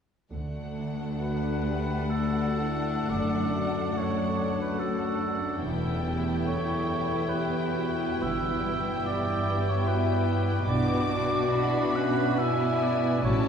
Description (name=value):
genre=classical, slow romantic movement for symphony orchestra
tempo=57-75 BPM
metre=3/4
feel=rubato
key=D major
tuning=A4 = 442 Hz
part: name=rich studio violin section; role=melody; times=0.3-13.5 s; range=F#5 to D6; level=-38 LUFS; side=left 4 dB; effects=none
part: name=rich studio violin section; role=second line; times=0.3-13.5 s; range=D4 to F#4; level=-35 LUFS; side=left 2 dB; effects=none
part: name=rich studio viola section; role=accompaniment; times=0.3-13.5 s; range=A3 to D4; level=-32 LUFS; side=right 2 dB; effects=none
part: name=concert harp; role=arpeggios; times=0.3-13.5 s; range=E2 to F#5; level=-34 LUFS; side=left 2 dB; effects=none
part: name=rich studio cello section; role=bass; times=0.3-13.5 s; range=D2 to B2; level=-31 LUFS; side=right 1 dB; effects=none
part: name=rich studio double bass section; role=bass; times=0.3-13.5 s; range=E1 to D2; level=-37 LUFS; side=right 1 dB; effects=none
part: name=warm oboe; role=second line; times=1.2-13.5 s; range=A4 to F#5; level=-32 LUFS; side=right 1 dB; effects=none
part: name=warm French horn section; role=sustained chords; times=1.2-13.5 s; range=D4 to A4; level=-35 LUFS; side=left 2 dB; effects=none
room=wet cathedral reverb, RT60 6.4 s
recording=heard from further back in the room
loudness=-25 LUFS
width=side -7 dB against mid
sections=0.3-13.5 A section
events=none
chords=0.3 D; 3.1 D/F#; 5.7 Em; 8.2 Em/G; 10.7 E7/B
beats=| 0.34 1.21 2.10 | 3.11 3.99 4.82 | 5.65 6.47 7.31 | 8.23 9.08 9.88 | 10.69 11.53 12.39 | 13.24